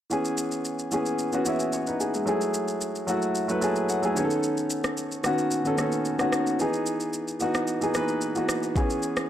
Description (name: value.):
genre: amapiano.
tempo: 111 BPM.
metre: 4/4.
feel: straight.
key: C# minor.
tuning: A4 = 437 Hz.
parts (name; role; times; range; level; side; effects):
warm grand piano; accompaniment; 0.1-9.3 s; D#3 to A5; -24 LUFS; equal; none.
smooth R&B drum kit; drums; 0.1-9.3 s; kick drum, rim click, shaker; -31 LUFS; equal; none.
room: light reverb, digital ambience.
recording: dark, warm production.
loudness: -24 LUFS.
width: side -11 dB against mid.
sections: 0.1-8.8 A section.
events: grand piano fill 3.4-4.4.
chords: 0.1 C#m7; 2.3 F#m9; 4.2 B9; 6.6 Emaj7; 8.8 C#m7.